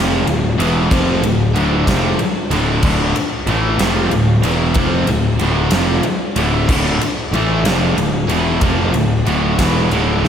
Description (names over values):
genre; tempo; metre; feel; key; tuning
quiet-loud alternative rock; 62 BPM (dotted quarters); 6/8; straight; D minor; A4 = 440 Hz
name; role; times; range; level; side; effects
biting overdriven guitar; riff; 0.0-10.3 s; D2 to C4; -22 LUFS; equal; none
cranked stack guitar; riff; 0.0-10.3 s; D2 to C4; -21 LUFS; right 8 dB; overdrive
thick fuzz guitar; riff; 0.0-10.3 s; D2 to A3; -19 LUFS; left 6 dB; distortion, slapback echo
fuzz picked electric bass; bass; 0.0-10.3 s; D1 to C2; -20 LUFS; right 1 dB; overdrive
huge arena drum kit; drums; 0.3-10.3 s; crash cymbal, kick drum, ride cymbal, snare drum; -20 LUFS; equal; none
room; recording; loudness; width
light reverb; none; -13 LUFS; side -8 dB against mid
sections
0.0-10.3 A section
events
none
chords
0.0 Dm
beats
| 0.91 1.87 | 2.84 3.80 | 4.76 5.73 | 6.69 7.65 | 8.62 9.59